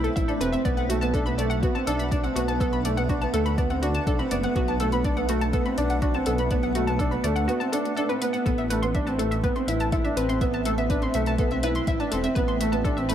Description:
piano and strings electronica; 123 BPM; 4/4; straight; A4 = 438 Hz
granular cloud pad; sustained chords; 0.0-13.1 s; A3 to F#5; -32 LUFS; equal; built-in reverb, sidechain pumping
analog pluck; arpeggios; 0.0-13.1 s; F#4 to C6; -30 LUFS; left 2 dB; chorus, cassette tape, sidechain pumping, tape echo
felt-muted upright piano; riff; 0.0-13.1 s; A3 to E4; -26 LUFS; right 2 dB; tape echo
dark detuned saw bass; bass; 0.0-13.1 s; E1 to D2; -28 LUFS; left 1 dB; sidechain pumping
electronic hi-hat; drums; 0.0-13.1 s; -39 LUFS; left 2 dB
electronic kick drum; drums; 0.2-12.9 s; -27 LUFS; left 1 dB
light reverb, digital ambience; -22 LUFS; side -10 dB against mid
0.0-13.1 A section
0.0 Amadd9; 0.7 Bm7; 8.5 Amadd9
0.17 | 0.66 1.15 1.63 2.12 | 2.61 3.10 3.58 4.07 | 4.56 5.05 5.54 6.02 | 6.51 7.00 7.49 7.97 | 8.46 8.95 9.44 9.93 | 10.41 10.90 11.39 11.88 | 12.36 12.85

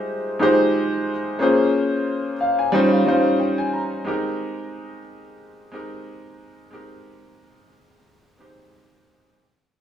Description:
soul; 90 BPM; 4/4; swing 54% on 16ths; Ab major; A4 = 440 Hz
warm concert grand piano; solo; 0.0-9.4 s; G3 to Bb5; -19 LUFS; equal
moderate studio reverb, RT60 0.7 s; band playing live in one room, studio reverb; -18 LUFS; side -9 dB against mid
0.0-9.4 A section
fade-out 0.0-9.4; grand piano fill 2.1-4.1
0.0 Fm9; 1.4 Bbm9; 2.7 Eb13; 4.1 Abmaj9
0.08 0.74 | 1.41 2.07 2.74 3.40 | 4.07 4.73 5.40 6.06 | 6.73 7.39 8.06 8.72

